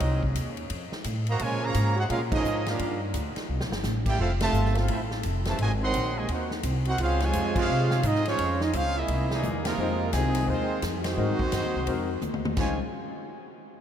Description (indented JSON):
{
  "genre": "jazz, big band swing",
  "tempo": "172 BPM",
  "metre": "4/4",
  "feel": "swing 63% on 8ths",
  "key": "unclear",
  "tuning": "A4 = 440 Hz",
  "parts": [
    { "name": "clear trumpet section", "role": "melody", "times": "0.0-12.8 s", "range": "Ab3 to C6", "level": "-31 LUFS", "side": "right 1 dB", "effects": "none" },
    { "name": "bright trombone section", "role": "second line", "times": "0.0-12.8 s", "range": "Bb2 to G4", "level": "-31 LUFS", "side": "right 3 dB", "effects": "none" },
    { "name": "upright bass", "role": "bass", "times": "0.0-12.8 s", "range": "F1 to C3", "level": "-28 LUFS", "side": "equal", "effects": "none" },
    { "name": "swinging big-band drum kit", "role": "drums", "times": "0.0-12.7 s", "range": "crash cymbal, hi-hat, kick drum, ride cymbal, snare drum, toms", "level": "-33 LUFS", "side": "left 1 dB", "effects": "none" },
    { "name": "clear concert grand piano", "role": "accompaniment", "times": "9.8-12.8 s", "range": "Ab3 to C5", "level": "-34 LUFS", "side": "left 7 dB", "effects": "none" }
  ],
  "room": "moderate cathedral reverb, RT60 4.3 s",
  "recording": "dreamy mix soaked in reverb",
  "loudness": "-24 LUFS",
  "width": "side -9 dB against mid",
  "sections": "0.0-9.8 A section; 9.8-12.6 B section; 12.6-13.8 C section",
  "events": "band accent 2.3, 4.4, 7.5, 9.6, 11.0; drum fill 3.5-3.8, 9.4-9.8, 12.2-12.6",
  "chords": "0.0 Cm7b5; 0.7 F; 1.4 Bbm7; 2.8 Gm7; 3.5 C13; 4.2 Fmaj7; 5.6 Ab9; 7.0 Dbmaj7; 9.1 C7alt; 9.8 Fm7; 12.6 Dbmaj7",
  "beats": "| 0.01 0.35 0.70 1.05 | 1.40 1.75 2.10 2.45 | 2.80 3.15 3.50 3.84 | 4.19 4.54 4.89 5.24 | 5.59 5.94 6.29 6.64 | 6.99 7.34 7.69 8.04 | 8.39 8.73 9.09 9.43 | 9.78 10.13 10.48 10.83 | 11.18 11.53 11.88 12.23 | 12.57"
}